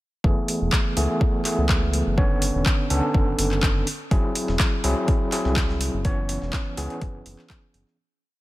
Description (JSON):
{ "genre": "deep house", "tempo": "124 BPM", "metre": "4/4", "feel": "swing 53% on 16ths", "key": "F# minor", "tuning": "A4 = 445 Hz", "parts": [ { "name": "overdriven tine electric piano", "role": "stabs", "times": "0.2-8.0 s", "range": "D3 to C#5", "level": "-26 LUFS", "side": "equal", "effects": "medium tremolo, low-pass filter, digital delay" }, { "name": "round analog bass", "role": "bass", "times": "0.2-7.8 s", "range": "E1 to C#2", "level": "-25 LUFS", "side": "equal", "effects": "sidechain pumping" }, { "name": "electronic kick drum", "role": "drums", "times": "0.2-7.6 s", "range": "none", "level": "-22 LUFS", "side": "equal", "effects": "overdrive, small room ambience" }, { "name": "deep house drum kit", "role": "drums", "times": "0.5-7.8 s", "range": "handclaps, hi-hat", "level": "-28 LUFS", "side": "equal", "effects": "overdrive, small room ambience" }, { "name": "dusty soul sampler-style drum kit", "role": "drums", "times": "4.1-8.0 s", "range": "hi-hat, snare drum", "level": "-39 LUFS", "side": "equal", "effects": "none" } ], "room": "little or no reverb", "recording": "none", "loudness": "-20 LUFS", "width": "side -17 dB against mid", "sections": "0.2-8.0 groove", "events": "filter sweep on tine electric piano 0.2-8.0; fade-out 5.4-8.0", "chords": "0.2 F#m11; 2.2 Bm9; 3.9 G#7b13; 6.0 C#m7" }